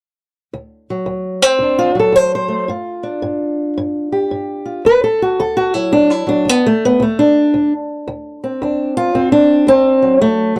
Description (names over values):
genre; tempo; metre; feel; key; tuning
acoustic country blues, solo or duo; 111 BPM; 4/4; swing 64% on 8ths; D mixolydian; A4 = 442 Hz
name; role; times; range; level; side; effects
fingerpicked old ladder-braced acoustic guitar; solo; 0.5-10.6 s; D2 to C5; -15 LUFS; equal; none
room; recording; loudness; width
light reverb; dry, close 1970s-style studio recording; -15 LUFS; mono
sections
0.5-4.9 A section; 4.9-10.6 B section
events
steel-string acoustic guitar solo 4.9-10.6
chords
0.5 D; 2.7 G5; 4.9 D7